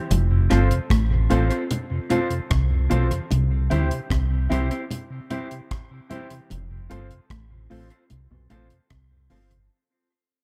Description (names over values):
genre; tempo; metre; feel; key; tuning
roots reggae; 75 BPM; 4/4; straight; unclear; A4 = 439 Hz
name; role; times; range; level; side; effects
mellow electric guitar; riff; 0.1-9.5 s; F2 to D3; -31 LUFS; equal; none
deep dub fingered electric bass; bass; 0.1-9.7 s; F1 to D2; -23 LUFS; equal; none
deep reggae drum kit; drums; 0.1-9.7 s; hi-hat, kick drum, rim click; -31 LUFS; equal; analog delay
congas; percussion; 0.1-9.7 s; none; -34 LUFS; equal; none
mellow tonewheel organ; accompaniment; 0.3-9.6 s; F2 to F4; -33 LUFS; equal; slow rotary speaker
clean electric guitar; accompaniment; 0.5-9.5 s; C4 to C5; -32 LUFS; equal; analog delay
warm upright piano; stabs; 0.5-9.5 s; E4 to C5; -33 LUFS; equal; none
room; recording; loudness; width
light reverb, small room ambience; echo-heavy mix; -22 LUFS; mono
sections
0.0-9.7 A section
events
fade-out 0.0-9.7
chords
0.1 F; 3.3 C; 6.5 F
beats
| 0.11 0.91 1.71 2.50 | 3.31 4.11 4.90 5.70 | 6.50 7.30 8.10 8.90